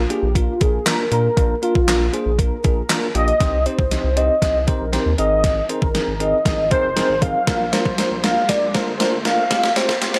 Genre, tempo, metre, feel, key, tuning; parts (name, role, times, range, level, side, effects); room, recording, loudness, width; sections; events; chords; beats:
dance-pop; 118 BPM; 4/4; straight; A4 = 442 Hz
warm velvety synth lead; melody; 0.0-10.2 s; F4 to F5; -22 LUFS; equal; chorus, tape echo
round analog bass; bass; 0.0-10.2 s; F1 to Bb2; -26 LUFS; equal; sidechain pumping
bell-like tine electric piano; accompaniment; 0.1-10.2 s; Ab3 to Eb5; -27 LUFS; equal; sidechain pumping
gated 80s digital drum machine; drums; 0.1-10.2 s; handclaps, hi-hat, kick drum, snare drum; -23 LUFS; equal; gated reverb, gated reverb snare, overdrive
riser; sound effects; 5.7-10.2 s; -35 LUFS; equal
digital ambience; dry, gritty hardware recording, high-pass filter; -19 LUFS; mono
0.0-3.4 A section; 3.4-10.2 B section
build-up 3.4-10.2; drum fill 3.4-10.2; filter sweep 3.4-10.2
0.0 Bb; 3.4 Cm; 5.2 Abadd9; 7.5 Bb; 9.5 Fmadd9
0.35 0.86 | 1.37 1.88 2.39 2.90 | 3.41 3.91 4.42 4.93 | 5.44 5.95 6.46 6.96 | 7.47 7.98 8.49 9.00 | 9.51 10.02